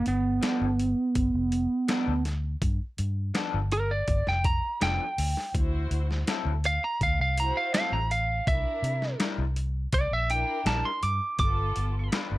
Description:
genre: straight-eighth soul blues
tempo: 82 BPM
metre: 4/4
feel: straight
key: G mixolydian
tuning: A4 = 441 Hz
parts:
  - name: lightly driven lead guitar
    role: melody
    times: 0.0-12.1 s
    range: B3 to D6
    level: -27 LUFS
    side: right 2 dB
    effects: none
  - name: vintage muted fingered electric bass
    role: bass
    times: 0.1-12.4 s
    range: F1 to C3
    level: -28 LUFS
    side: equal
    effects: none
  - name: boom bap sampler-style drum kit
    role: drums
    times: 0.1-12.3 s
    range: hi-hat, kick drum, snare drum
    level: -30 LUFS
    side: equal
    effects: none
  - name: electric guitar through a small old amp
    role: stabs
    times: 0.4-12.4 s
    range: F3 to B4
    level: -34 LUFS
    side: left 6 dB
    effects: lush chorus
  - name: dark studio string section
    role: sustained chords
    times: 5.5-12.1 s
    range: B3 to C5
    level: -38 LUFS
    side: equal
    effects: none
room: light reverb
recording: none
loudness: -25 LUFS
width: side -17 dB against mid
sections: 0.0-12.4 A section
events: lead electric guitar solo 0.0-12.4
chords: 0.0 G9; 5.5 D9; 8.5 C9; 11.4 G9

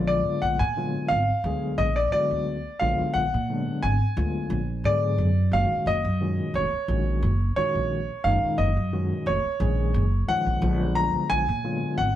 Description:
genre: electric jazz fusion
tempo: 88 BPM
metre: 4/4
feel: swing 55% on 16ths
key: unclear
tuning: A4 = 440 Hz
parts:
  - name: bright grand piano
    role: melody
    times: 0.0-12.2 s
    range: C#5 to A#5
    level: -26 LUFS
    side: equal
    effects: none
  - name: overdriven tine electric piano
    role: accompaniment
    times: 0.0-12.1 s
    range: A#2 to G#4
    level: -29 LUFS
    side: left 2 dB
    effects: fast tremolo
  - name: upright bass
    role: bass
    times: 0.0-12.2 s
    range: E#1 to A#2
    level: -25 LUFS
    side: equal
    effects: none
room: moderate stone room reverb, RT60 1.0 s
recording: band playing live in one room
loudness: -22 LUFS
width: side -12 dB against mid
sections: 0.0-12.2 A section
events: none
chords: 0.0 A#7b9b13; 5.5 F#maj9; 10.6 A#7b9b13

